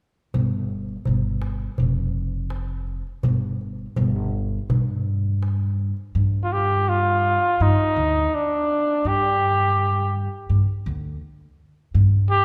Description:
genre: Arabic maqam ensemble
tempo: 83 BPM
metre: 4/4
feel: straight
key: unclear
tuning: A4 = 445 Hz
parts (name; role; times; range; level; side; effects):
- upright bass; bass; 0.3-12.4 s; F1 to G2; -25 LUFS; equal; none
- darbuka; percussion; 0.3-6.1 s; none; -27 LUFS; equal; none
- warm flugelhorn; melody; 6.4-12.4 s; D4 to G4; -22 LUFS; equal; none
room: wet scoring stage reverb, RT60 1.6 s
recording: recorded in a church or concert hall, lossy compression artefacts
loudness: -22 LUFS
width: mono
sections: 0.3-6.1 A section; 6.1-12.4 B section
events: none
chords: none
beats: | 0.34 1.06 1.79 2.52 | 3.24 3.97 4.69 5.42 | 6.14 6.87 7.59 8.32 | 9.04 9.77 10.49 11.22 | 11.94

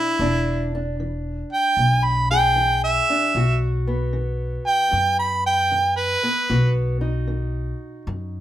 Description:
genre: acoustic country blues, solo or duo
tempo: 76 BPM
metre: 4/4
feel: swing 67% on 8ths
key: unclear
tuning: A4 = 439 Hz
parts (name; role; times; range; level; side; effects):
- warm harmonica; melody; 0.0-6.7 s; E4 to B5; -19 LUFS; right 2 dB; none
- fingerpicked steel-string acoustic guitar; accompaniment; 0.0-8.4 s; E2 to G#4; -27 LUFS; left 1 dB; none
- upright bass; bass; 0.2-8.4 s; E1 to F#2; -24 LUFS; left 1 dB; none
room: light reverb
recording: minimal, uncompressed stereo recording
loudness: -18 LUFS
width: side -12 dB against mid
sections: 0.0-8.4 A section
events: harmonica solo 0.0-8.4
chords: 0.0 E7; 3.4 B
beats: | 0.20 0.99 1.78 2.56 | 3.35 4.14 4.93 5.72 | 6.50 7.29 8.08

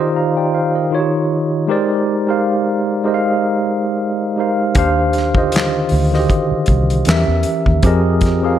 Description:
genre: R&B, neo-soul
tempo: 78 BPM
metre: 4/4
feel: swing 54% on 16ths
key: Eb major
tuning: A4 = 440 Hz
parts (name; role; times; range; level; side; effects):
- mellow tine electric piano; accompaniment; 0.0-8.6 s; D3 to Bb5; -15 LUFS; equal; medium stereo tremolo
- warm soul drum kit; drums; 4.7-8.4 s; handclaps, hi-hat, kick drum, snare drum; -18 LUFS; equal; none
- vintage muted fingered electric bass; bass; 4.8-8.6 s; C2 to F2; -17 LUFS; equal; none
room: moderate plate reverb, RT60 1.8 s, small room ambience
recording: dreamy mix soaked in reverb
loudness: -14 LUFS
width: side -10 dB against mid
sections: 0.0-8.6 A section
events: none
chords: 0.0 Ebmaj13; 0.9 Eb9; 1.7 Abmaj9#11; 4.8 Ebmaj13; 7.1 Edim7; 7.8 Fm11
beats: 0.14 0.91 | 1.68 2.45 3.22 3.99 | 4.76 5.53 6.29 7.06 | 7.83

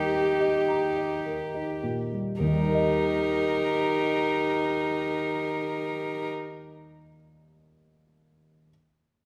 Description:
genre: classical, slow romantic movement for piano quartet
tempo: 50-60 BPM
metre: 3/4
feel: rubato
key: Eb major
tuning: A4 = 440 Hz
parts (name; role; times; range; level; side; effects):
- rich violin; melody; 0.0-6.3 s; G4 to Bb4; -33 LUFS; equal; none
- warm cello; second line; 0.0-6.3 s; Eb4; -33 LUFS; equal; none
- dark grand piano; accompaniment; 0.0-8.7 s; Eb2 to Bb5; -33 LUFS; equal; none
- warm viola; accompaniment; 0.0-6.3 s; G4; -33 LUFS; equal; none
room: moderate recital hall reverb, RT60 1.7 s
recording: none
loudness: -27 LUFS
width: mono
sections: 0.0-2.4 A section; 2.4-5.5 B section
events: slowing down 0.0-2.4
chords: 0.0 Eb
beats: 0.14 1.26 | 2.41 3.43 4.46

